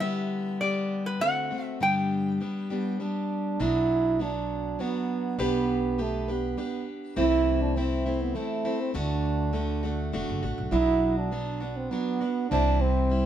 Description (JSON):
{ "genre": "folk", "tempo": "101 BPM", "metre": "3/4", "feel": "straight", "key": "G major", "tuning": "A4 = 439 Hz", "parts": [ { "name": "metal-body resonator slide guitar", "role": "melody", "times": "0.0-3.0 s", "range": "B4 to G5", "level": "-28 LUFS", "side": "equal", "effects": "none" }, { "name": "picked plugged-in steel-string acoustic guitar", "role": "accompaniment", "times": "0.0-13.3 s", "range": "G2 to B4", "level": "-30 LUFS", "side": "left 2 dB", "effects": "none" }, { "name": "mellow French horn", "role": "second line", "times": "2.7-13.3 s", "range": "A3 to E4", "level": "-27 LUFS", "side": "right 5 dB", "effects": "none" }, { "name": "upright bass", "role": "bass", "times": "3.6-13.3 s", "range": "E1 to D2", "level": "-30 LUFS", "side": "equal", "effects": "none" } ], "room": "light reverb", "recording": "band playing live in one room", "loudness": "-25 LUFS", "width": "side -10 dB against mid", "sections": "0.0-3.6 A section; 3.6-13.3 B section", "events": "French horn solo 3.6-13.3", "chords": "0.0 G/D; 1.2 D7; 1.8 G; 3.6 Bm; 5.4 G/B; 7.2 Am/C; 9.0 D; 10.7 Bm; 12.5 C", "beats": "| 0.01 0.61 1.21 | 1.81 2.41 3.01 | 3.60 4.20 4.79 | 5.39 5.98 6.58 | 7.17 7.76 8.36 | 8.95 9.54 10.14 | 10.73 11.33 11.92 | 12.51 13.11" }